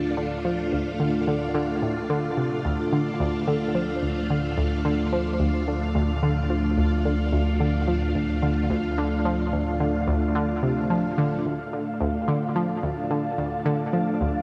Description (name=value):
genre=ambient, sequencer-driven space music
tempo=109 BPM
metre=4/4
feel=straight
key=D minor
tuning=A4 = 441 Hz
part: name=string machine, full ensemble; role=sustained chords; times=0.0-14.4 s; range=A3 to A5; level=-29 LUFS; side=equal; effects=ensemble chorus, shimmer reverb
part: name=analog pluck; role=riff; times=0.0-14.3 s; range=D2 to F3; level=-28 LUFS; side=equal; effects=chorus, tape echo, shimmer reverb
part: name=warm sub bass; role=bass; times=0.0-11.4 s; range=D2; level=-32 LUFS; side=equal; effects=tube saturation
part: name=bubbling stepped-filter texture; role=texture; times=0.0-14.4 s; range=F5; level=-38 LUFS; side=equal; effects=chorus, built-in reverb, shimmer reverb
room=moderate plate reverb, RT60 2.7 s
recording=none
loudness=-25 LUFS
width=mono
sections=0.0-11.5 A section; 11.5-14.4 B section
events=fade-in on sub bass 0.0-11.5; fade-in on synth texture 0.0-11.5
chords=0.0 Dm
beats=| 0.45 1.00 1.55 2.10 | 2.65 3.20 3.75 4.30 | 4.85 5.40 5.95 6.50 | 7.05 7.60 8.15 8.71 | 9.26 9.81 10.36 10.91 | 11.46 12.01 12.56 13.11 | 13.66 14.21